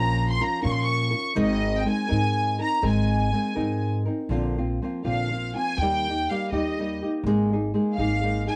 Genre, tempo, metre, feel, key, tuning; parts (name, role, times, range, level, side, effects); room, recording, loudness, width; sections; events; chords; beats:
mexican folk, mariachi; 82 BPM (dotted quarters); 6/8; straight; Ab major; A4 = 441 Hz
rich studio violin section; melody; 0.0-8.6 s; Eb5 to Db6; -29 LUFS; equal; cassette tape
nylon-string guitar; accompaniment; 0.0-8.6 s; Bb2 to Bb4; -28 LUFS; equal
upright bass; bass; 0.0-8.5 s; Ab1 to Bb2; -29 LUFS; equal
moderate booth ambience, RT60 0.2 s; home recording on cassette; -25 LUFS; mono
0.0-4.3 A section; 4.3-8.6 B section
0.0 Bbm; 1.4 Abadd9; 4.3 Bbadd9; 5.8 Eb; 7.3 Absus2
0.64 | 1.37 2.10 | 2.83 3.57 | 4.31 5.05 | 5.79 6.52 | 7.25 7.98